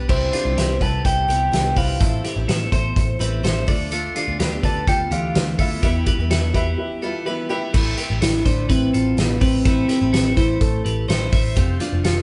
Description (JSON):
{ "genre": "jangly indie pop", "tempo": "126 BPM", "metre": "4/4", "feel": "straight", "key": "A minor", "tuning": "A4 = 439 Hz", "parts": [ { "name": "picked steel-string acoustic guitar", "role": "accompaniment", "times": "0.0-12.2 s", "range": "A2 to B4", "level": "-34 LUFS", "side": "equal", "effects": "none" }, { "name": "twelve-string electric guitar", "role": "arpeggios", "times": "0.0-12.2 s", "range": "E3 to E5", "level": "-29 LUFS", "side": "equal", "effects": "spring reverb" }, { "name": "vintage muted picked electric bass", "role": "bass", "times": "0.0-12.2 s", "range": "F1 to E2", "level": "-25 LUFS", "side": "equal", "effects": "none" }, { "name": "soft octave-layered synth lead", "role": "melody", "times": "0.1-12.2 s", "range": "B3 to A5", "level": "-24 LUFS", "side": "equal", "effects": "chorus" }, { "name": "dark upright piano", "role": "accompaniment", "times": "0.1-7.8 s", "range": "E4 to F5", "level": "-33 LUFS", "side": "equal", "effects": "none" }, { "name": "loose indie drum kit", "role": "drums", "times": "0.1-12.2 s", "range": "crash cymbal, hi-hat, kick drum, snare drum", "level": "-24 LUFS", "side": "equal", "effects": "none" } ], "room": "light reverb", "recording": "band playing live in one room, nothing above 10.8 kHz", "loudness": "-20 LUFS", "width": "mono", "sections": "0.1-7.7 A section; 7.7-12.2 B section", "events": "break 6.8-7.7", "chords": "0.1 Cmaj7; 2.0 Am; 3.7 Dm; 5.8 Em; 7.7 Amadd9; 11.6 F" }